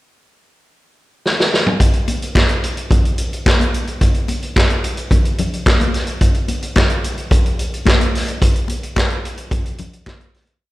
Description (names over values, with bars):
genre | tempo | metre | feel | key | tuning
disco | 109 BPM | 4/4 | straight | none | none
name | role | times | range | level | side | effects
vintage drum kit | drums | 1.3-10.6 s | handclaps, hi-hat, kick drum, snare drum, toms | -15 LUFS | equal | none
congas | percussion | 1.8-10.3 s | none | -25 LUFS | left 3 dB | slapback echo
room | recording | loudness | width
light reverb | live gig heard through the venue's PA, recital hall reverb | -15 LUFS | side -18 dB against mid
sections
0.0-1.8 pickup bar; 1.8-10.6 breakdown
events
drum fill 1.2-1.8; fade-out 8.4-10.6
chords
none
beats
0.14 0.69 1.24 | 1.80 2.35 2.90 3.46 | 4.01 4.56 5.11 5.66 | 6.21 6.76 7.31 7.86 | 8.41 8.96 9.52 10.07